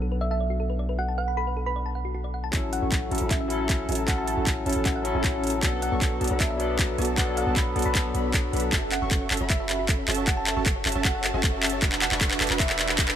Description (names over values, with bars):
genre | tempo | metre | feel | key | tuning
future bass | 155 BPM | 4/4 | half-time | A major | A4 = 440 Hz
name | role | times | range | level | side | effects
barky tine electric piano | accompaniment | 0.0-8.8 s | F#3 to A4 | -30 LUFS | left 4 dB | analog chorus, sidechain pumping, digital delay
thumb-piano-like synth pluck | arpeggios | 0.0-2.5, 8.7-13.1 s | F#4 to C#6 | -38 LUFS | left 3 dB | chorus, sidechain pumping, digital delay
long sustained 808-style bass | bass | 0.0-13.2 s | E1 to B1 | -30 LUFS | equal | sidechain pumping
thumb-piano-like synth pluck | melody | 0.2-12.8 s | E5 to B5 | -33 LUFS | right 1 dB | chorus, vintage 12-bit sampler grit, sidechain pumping, digital delay
big bright polysynth | riff | 2.5-13.2 s | B3 to C#6 | -30 LUFS | right 2 dB | chorus, sidechain pumping
electronic kick drum | drums | 2.5-13.1 s | none | -26 LUFS | equal | none
trap drum kit | drums | 2.5-13.2 s | handclaps, hi-hat | -27 LUFS | equal | none
riser | sound effects | 10.0-13.2 s | none | -38 LUFS | right 2 dB | none
room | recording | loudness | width
light reverb | none | -22 LUFS | side -10 dB against mid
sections
0.0-2.5 A section; 2.5-13.2 B section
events
build-up 2.5-13.2; drum fill 2.5-13.2; filter sweep on analog polysynth 2.5-13.2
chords
0.0 Bm7; 2.5 A6; 5.6 Bm7; 8.7 F#m7; 11.8 E9sus4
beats
0.21 0.60 | 0.98 1.37 1.76 2.15 | 2.53 2.92 3.31 3.69 | 4.08 4.47 4.86 5.24 | 5.63 6.02 6.40 6.79 | 7.18 7.57 7.95 8.34 | 8.73 9.11 9.50 9.89 | 10.28 10.66 11.05 11.44 | 11.82 12.21 12.60 12.98